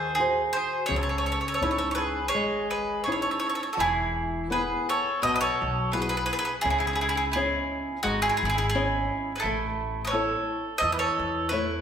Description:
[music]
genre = italian folk, Italian serenade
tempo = 85 BPM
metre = 4/4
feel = swing 54% on 8ths, rubato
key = C# minor, E major from 3.8 s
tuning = A4 = 440 Hz
[part]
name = bowl-back mandolin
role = melody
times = 0.0-11.8 s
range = F#4 to D#5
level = -27 LUFS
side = right 1 dB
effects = none
[part]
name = bowl-back mandolin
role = second line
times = 0.0-11.8 s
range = D#4 to B4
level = -31 LUFS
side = right 2 dB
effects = none
[part]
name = flamenco guitar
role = accompaniment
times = 0.0-11.8 s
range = B2 to D#5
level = -31 LUFS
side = left 2 dB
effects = none
[part]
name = upright bass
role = bass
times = 0.0-11.8 s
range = E1 to E2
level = -34 LUFS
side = equal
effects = none
[sound]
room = wet recital hall reverb, RT60 1.8 s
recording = recorded in a church or concert hall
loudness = -24 LUFS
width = side -8 dB against mid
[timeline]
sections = 0.0-3.8 A section; 3.8-11.8 B section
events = none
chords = 0.0 G#7; 0.9 C#madd9; 3.8 E; 6.6 C#madd9; 9.4 A

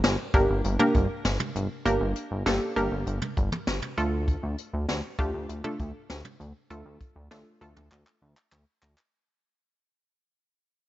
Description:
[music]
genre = synth-pop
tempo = 99 BPM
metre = 4/4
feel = straight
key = unclear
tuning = A4 = 440 Hz
[part]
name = chorused synth bass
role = bass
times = 0.0-9.0 s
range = G1 to D2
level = -29 LUFS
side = equal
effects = none
[part]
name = jazz brush drum kit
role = drums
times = 0.0-9.1 s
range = handclaps, hi-hat, kick drum, snare drum, toms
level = -29 LUFS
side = equal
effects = none
[part]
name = analog pluck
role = accompaniment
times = 0.3-8.4 s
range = A3 to Bb4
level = -28 LUFS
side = right 1 dB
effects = chorus
[sound]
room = light reverb, small room ambience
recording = nothing above 7.8 kHz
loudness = -25 LUFS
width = side -15 dB against mid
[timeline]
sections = 0.0-9.1 A section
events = fade-out 0.0-9.1; drum fill 7.9-9.1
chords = 0.0 Gm; 4.0 Dm

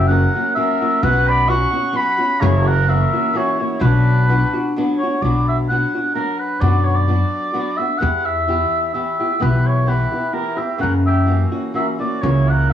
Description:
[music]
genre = mexican folk, mariachi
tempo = 128 BPM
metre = 3/4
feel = swing 53% on 8ths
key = B minor, B harmonic minor from 5.2 s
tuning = A4 = 440 Hz
[part]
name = warm oboe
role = melody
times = 0.0-12.7 s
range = A#4 to C#6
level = -20 LUFS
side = equal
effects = cassette tape
[part]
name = mellow trumpet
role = second line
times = 0.0-4.8, 9.9-12.7 s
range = D4 to F#5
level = -27 LUFS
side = right 4 dB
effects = cassette tape
[part]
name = flamenco guitar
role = accompaniment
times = 0.0-12.7 s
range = F#2 to G4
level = -22 LUFS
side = left 1 dB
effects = cassette tape
[part]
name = upright bass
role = bass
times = 0.0-12.7 s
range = F#1 to F#2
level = -16 LUFS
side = equal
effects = none
[sound]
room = moderate spring reverb, RT60 1.5 s, studio reverb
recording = home recording on cassette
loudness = -15 LUFS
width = side -10 dB against mid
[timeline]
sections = 0.0-5.2 A section; 5.2-12.7 B section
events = none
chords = 0.0 F#; 1.0 Bsus2; 2.4 F#7; 3.8 Bm; 8.0 Em; 10.8 F#7

